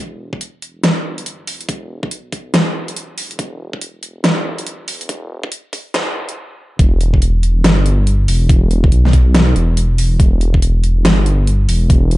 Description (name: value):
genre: deep dubstep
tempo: 141 BPM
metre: 4/4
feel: swing 62% on 16ths, half-time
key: E minor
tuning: A4 = 443 Hz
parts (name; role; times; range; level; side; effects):
- dark detuned saw bass; bass; 0.0-12.2 s; E1 to B1; -15 LUFS; equal; high-pass filter
- electronic kick drum; drums; 0.3-12.0 s; none; -14 LUFS; equal; overdrive, high-pass filter on kick, high-pass filter on room
- dubstep drum kit; drums; 0.4-12.2 s; hi-hat, snare drum; -18 LUFS; equal; overdrive
room: light reverb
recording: high-pass filter, nothing above 10.5 kHz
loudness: -12 LUFS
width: side -18 dB against mid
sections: 0.0-6.8 A section; 6.8-12.2 B section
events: build-up 0.0-6.8; filter sweep 0.0-6.8; stop 6.4-6.8; drop 6.8-12.2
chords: none